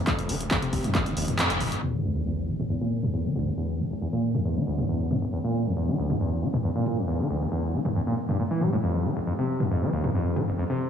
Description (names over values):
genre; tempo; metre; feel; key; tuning
driving peak-time techno; 137 BPM; 4/4; straight; unclear; A4 = 440 Hz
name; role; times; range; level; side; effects
overdriven acid bass; riff; 0.0-10.9 s; E1 to G3; -26 LUFS; equal; distortion, lush chorus, sidechain pumping, analog delay
electronic kick drum; drums; 0.1-1.0 s; none; -28 LUFS; equal; none
punchy analog drum machine; drums; 0.1-10.5 s; crash cymbal, handclaps, hi-hat, toms; -30 LUFS; equal; sidechain pumping on hats, low-pass filter on hats, sidechain pumping on toms, low-pass filter on toms, low-pass filter on snare, sidechain pumping on cymbals, low-pass filter on cymbals
saturated sub bass; bass; 0.2-1.7 s; F1; -38 LUFS; equal; none
sub drop; sound effects; 1.8-3.6 s; none; -34 LUFS; equal; none
room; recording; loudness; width
wet plate reverb, RT60 2.5 s; dreamy mix soaked in reverb, low-pass filter, small room ambience; -24 LUFS; side -8 dB against mid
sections
0.0-1.8 A section; 1.8-10.9 B section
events
kick drops out 1.4-1.8; band accent 1.4; impact 1.8-3.6; filter sweep on drum 1.8-10.9; filter sweep on acid bass 1.8-10.9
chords
0.0 F5; 1.8 N.C.; 8.8 F5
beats
| 0.07 0.51 0.95 1.39 | 1.82 2.26 2.70 3.14 | 3.58 4.01 4.45 4.89 | 5.33 5.77 6.21 6.64 | 7.08 7.52 7.96 8.39 | 8.83 9.27 9.71 10.15 | 10.58